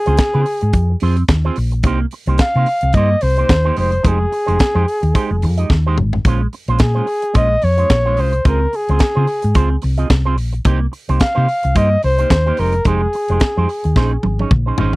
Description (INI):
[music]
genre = disco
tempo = 109 BPM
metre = 4/4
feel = swing 56% on 16ths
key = Bb dorian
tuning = A4 = 440 Hz
[part]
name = breathy flugelhorn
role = melody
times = 0.0-14.5 s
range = Ab4 to F5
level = -18 LUFS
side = equal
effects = none
[part]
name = electric guitar with an envelope filter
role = accompaniment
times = 0.1-15.0 s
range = Ab3 to Eb5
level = -22 LUFS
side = right 6 dB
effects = none
[part]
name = hollow-body short-scale fingered electric bass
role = bass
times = 0.1-15.0 s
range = F1 to Db3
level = -16 LUFS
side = equal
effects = none
[part]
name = tight funk drum kit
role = drums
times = 0.1-15.0 s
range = hi-hat, kick drum, snare drum, toms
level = -15 LUFS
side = equal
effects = none
[sound]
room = little or no reverb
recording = dry, close 1970s-style studio recording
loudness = -13 LUFS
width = side -21 dB against mid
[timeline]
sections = 0.0-15.0 A section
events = drum fill 5.7-6.3, 14.0-15.0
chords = 0.0 Dbmaj7 (rootless); 1.8 Cm7; 3.8 Fm9; 6.3 Bbm9; 8.5 Dbmaj7; 10.7 Cm7; 12.6 Fm9; 14.0 Bbm11